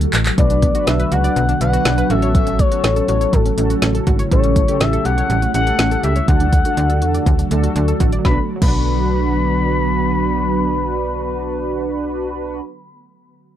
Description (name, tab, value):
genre	synth-pop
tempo	122 BPM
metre	4/4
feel	straight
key	B minor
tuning	A4 = 442 Hz
part	ethereal airy pad	sustained chords	0.0-12.2 s	C#3 to B4	-23 LUFS	right 1 dB	ensemble chorus, built-in reverb
part	slap-like FM bass	bass	0.0-12.6 s	G#1 to E2	-20 LUFS	equal	none
part	deep house drum kit	drums	0.0-8.8 s	crash cymbal, handclaps, hi-hat, kick drum, snare drum	-17 LUFS	equal	none
part	expressive synth lead	melody	0.4-12.6 s	A4 to B5	-22 LUFS	left 4 dB	chorus, digital delay
part	mellow synth brass	accompaniment	0.4-12.6 s	C#4 to B4	-23 LUFS	right 2 dB	chorus
part	analog pluck	arpeggios	0.4-12.7 s	F#3 to D5	-26 LUFS	right 3 dB	chorus, digital delay
room	light reverb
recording	dark, warm production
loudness	-14 LUFS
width	side -11 dB against mid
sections	0.4-8.2 A section; 8.2-12.2 B section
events	drum fill 0.0-0.4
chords	0.4 Bm; 2.1 A6; 4.3 A7; 6.3 D; 8.2 Bm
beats	| 0.38 0.87 1.36 1.86 | 2.35 2.84 3.33 3.82 | 4.32 4.81 5.30 5.79 | 6.28 6.77 7.26 7.76 | 8.25 8.74 9.23 9.72 | 10.22 10.71 11.20 11.69